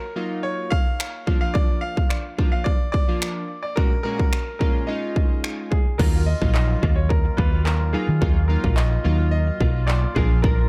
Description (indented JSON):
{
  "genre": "dance-pop",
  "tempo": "108 BPM",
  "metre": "4/4",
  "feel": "straight",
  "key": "Eb minor",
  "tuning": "A4 = 440 Hz",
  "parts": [
    { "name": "clear baby grand piano", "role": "melody", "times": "0.0-10.7 s", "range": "Ab4 to F5", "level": "-32 LUFS", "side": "equal", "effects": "tape echo" },
    { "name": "chorused retro synth keys", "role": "accompaniment", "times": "0.2-10.7 s", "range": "Bb2 to Gb4", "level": "-32 LUFS", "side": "equal", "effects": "tape echo" },
    { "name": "house drum kit", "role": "drums", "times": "0.7-10.6 s", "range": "crash cymbal, finger snaps, handclaps, kick drum", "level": "-23 LUFS", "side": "equal", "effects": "overdrive" },
    { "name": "warm woodwind section", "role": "sustained chords", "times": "6.0-10.7 s", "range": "D3 to F4", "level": "-37 LUFS", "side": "equal", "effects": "sidechain pumping" },
    { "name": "direct-recorded clean electric guitar", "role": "riff", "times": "6.0-10.7 s", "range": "Gb3 to Bb4", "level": "-35 LUFS", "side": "equal", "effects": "ensemble chorus, tape echo" },
    { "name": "vintage muted fingered electric bass", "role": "bass", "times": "6.0-10.7 s", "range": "Bb1 to Eb3", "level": "-23 LUFS", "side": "equal", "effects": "sidechain pumping" }
  ],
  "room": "digital ambience",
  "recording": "echo-heavy mix",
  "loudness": "-22 LUFS",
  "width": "mono",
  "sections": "0.0-6.0 A section; 6.0-10.7 B section",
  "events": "none",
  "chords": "0.0 Ebmadd9; 1.3 Bb; 3.8 Gbadd9/Bb; 4.9 Dbadd9; 6.0 Ebmadd9; 10.2 Bb"
}